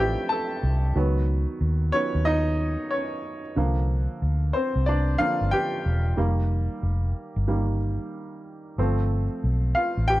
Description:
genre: R&B, neo-soul.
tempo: 92 BPM.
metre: 4/4.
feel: swing 64% on 16ths.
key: C dorian.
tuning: A4 = 440 Hz.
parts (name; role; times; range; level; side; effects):
clear baby grand piano; accompaniment; 0.0-10.2 s; D3 to A5; -26 LUFS; equal; none.
vintage muted fingered electric bass; bass; 0.0-10.2 s; E1 to Eb2; -23 LUFS; equal; none.
room: light reverb.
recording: dark, warm production.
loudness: -22 LUFS.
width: side -17 dB against mid.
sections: 0.0-10.2 A section.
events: grand piano solo 0.0-10.2.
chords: 0.0 G9sus4; 0.9 Db9sus4; 3.6 C9sus4; 6.2 F9sus4; 8.8 G9sus4.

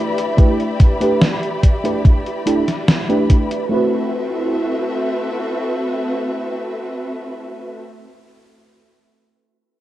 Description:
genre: vaporwave.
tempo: 72 BPM.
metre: 4/4.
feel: straight.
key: A dorian.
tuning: A4 = 440 Hz.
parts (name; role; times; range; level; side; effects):
mellow FM electric piano; accompaniment; 0.0-8.1 s; A3 to B4; -20 LUFS; right 1 dB; phaser, lush chorus, tape echo.
warm symphonic string section; sustained chords; 0.0-7.8 s; C4 to B5; -24 LUFS; equal; none.
gated 80s digital drum machine; drums; 0.2-3.7 s; hi-hat, snare drum; -18 LUFS; equal; gated reverb, gated reverb snare.
electronic kick drum; drums; 0.4-3.5 s; none; -11 LUFS; equal; none.
room: light reverb, digital ambience.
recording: dark, warm production, cassette tape.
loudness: -15 LUFS.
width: side -14 dB against mid.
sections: 0.0-3.7 A section; 3.7-7.0 B section.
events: none.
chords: 0.0 G6; 3.7 Am69.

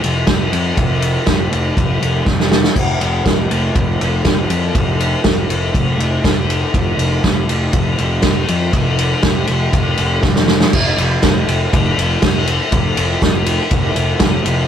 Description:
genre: garage rock duo or trio.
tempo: 120 BPM.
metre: 4/4.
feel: straight.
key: unclear.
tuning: A4 = 440 Hz.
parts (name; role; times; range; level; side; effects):
fuzz picked electric bass; bass; 0.0-14.6 s; F1 to F2; -17 LUFS; equal; overdrive.
vintage drum kit; drums; 0.0-14.6 s; crash cymbal, kick drum, ride cymbal, snare drum; -15 LUFS; equal; none.
room: light reverb.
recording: rough rehearsal-room recording.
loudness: -13 LUFS.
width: side -9 dB against mid.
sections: 0.0-10.7 A section; 10.7-14.7 B section.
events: drum fill 2.3-2.8, 10.2-10.7.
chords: none.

